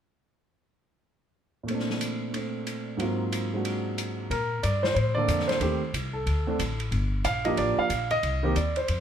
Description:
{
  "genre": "jazz piano trio",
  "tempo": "183 BPM",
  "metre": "4/4",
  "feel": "swing 62% on 8ths",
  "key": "Bb major",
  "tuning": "A4 = 440 Hz",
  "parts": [
    { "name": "warm grand piano", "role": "melody", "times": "1.6-9.0 s", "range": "Ab2 to F5", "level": "-27 LUFS", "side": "right 1 dB", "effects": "none" },
    { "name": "open jazz drum kit", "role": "drums", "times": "1.7-9.0 s", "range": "hi-hat, ride cymbal, snare drum", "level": "-35 LUFS", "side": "equal", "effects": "none" },
    { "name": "upright bass", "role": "bass", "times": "4.3-9.0 s", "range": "G1 to Bb2", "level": "-28 LUFS", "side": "left 1 dB", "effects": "none" }
  ],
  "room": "light reverb",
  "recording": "none",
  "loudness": "-25 LUFS",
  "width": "side -8 dB against mid",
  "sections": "1.7-4.3 A section; 4.3-9.0 B section",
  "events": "none",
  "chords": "1.7 Bbmaj9; 3.0 Ab13; 4.3 Bbmaj9; 5.6 Am7b5; 6.3 D5; 6.9 Gm7; 8.2 Cm"
}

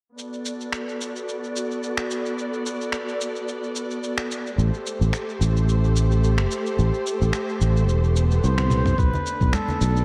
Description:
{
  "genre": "sunset chillout",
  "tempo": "109 BPM",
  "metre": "4/4",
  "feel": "swing 55% on 16ths",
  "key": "unclear",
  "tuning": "A4 = 439 Hz",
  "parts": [
    { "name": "rich studio string section", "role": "sustained chords", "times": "0.2-10.0 s", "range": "A3 to D5", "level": "-30 LUFS", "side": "equal", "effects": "low-pass filter" },
    { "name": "dusty soul sampler-style drum kit", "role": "drums", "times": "0.2-10.0 s", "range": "finger snaps, shaker, toms", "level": "-33 LUFS", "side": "equal", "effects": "none" },
    { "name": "sustaining fretless electric bass", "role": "bass", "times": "4.6-10.0 s", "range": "E1 to C2", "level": "-22 LUFS", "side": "equal", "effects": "none" },
    { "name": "swell", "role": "sound effects", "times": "8.2-9.0 s", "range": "none", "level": "-38 LUFS", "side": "equal", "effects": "none" },
    { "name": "trumpet with cup mute", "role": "melody", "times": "8.4-10.0 s", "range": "A4 to C5", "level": "-30 LUFS", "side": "equal", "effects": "diffuse ambient delay" },
    { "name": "electronic kick drum", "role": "drums", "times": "9.0-9.5 s", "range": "none", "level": "-24 LUFS", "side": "equal", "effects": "none" },
    { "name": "congas", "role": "percussion", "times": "9.1-9.8 s", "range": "none", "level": "-31 LUFS", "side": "equal", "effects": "none" }
  ],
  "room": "moderate lush hall reverb, RT60 2.7 s",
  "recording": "dreamy mix soaked in reverb",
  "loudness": "-23 LUFS",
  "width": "mono",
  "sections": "0.2-9.0 A section; 9.0-10.0 B section",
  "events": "filter sweep on string section 0.2-9.0; swell 8.2-9.0; drum fill 8.6-9.0",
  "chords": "0.2 Bm7; 4.6 Am7; 9.0 Bm7"
}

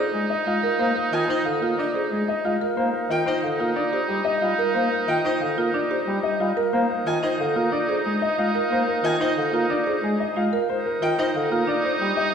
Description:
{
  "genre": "classical, minimalist pattern music",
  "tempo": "182 BPM",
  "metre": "6/4",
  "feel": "straight",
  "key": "Bb mixolydian",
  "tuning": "A4 = 442 Hz",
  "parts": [
    { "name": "warm grand piano", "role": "melody", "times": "0.0-12.3 s", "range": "G4 to F5", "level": "-25 LUFS", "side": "left 4 dB", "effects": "none" },
    { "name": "bright oboe", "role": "second line", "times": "0.0-12.3 s", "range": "Eb4", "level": "-27 LUFS", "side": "right 3 dB", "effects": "none" },
    { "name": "buzzing marimba with medium mallets", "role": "arpeggios", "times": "0.0-11.9 s", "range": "D4 to Bb4", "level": "-27 LUFS", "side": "right 3 dB", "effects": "none" },
    { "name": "warm bass clarinet", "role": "accompaniment", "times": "0.1-12.1 s", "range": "D3 to Bb3", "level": "-27 LUFS", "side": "right 1 dB", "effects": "none" },
    { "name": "rich violin", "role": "arpeggios", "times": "1.1-11.3 s", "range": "Eb5 to Ab5", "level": "-31 LUFS", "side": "left 2 dB", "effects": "none" }
  ],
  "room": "wet scoring stage reverb, RT60 1.5 s",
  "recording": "heard from further back in the room",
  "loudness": "-20 LUFS",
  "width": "side -7 dB against mid",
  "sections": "0.0-12.3 A section",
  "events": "none",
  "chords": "0.0 Bb9sus4; 2.8 Cm9; 6.7 Bb9sus4; 10.7 Cm9"
}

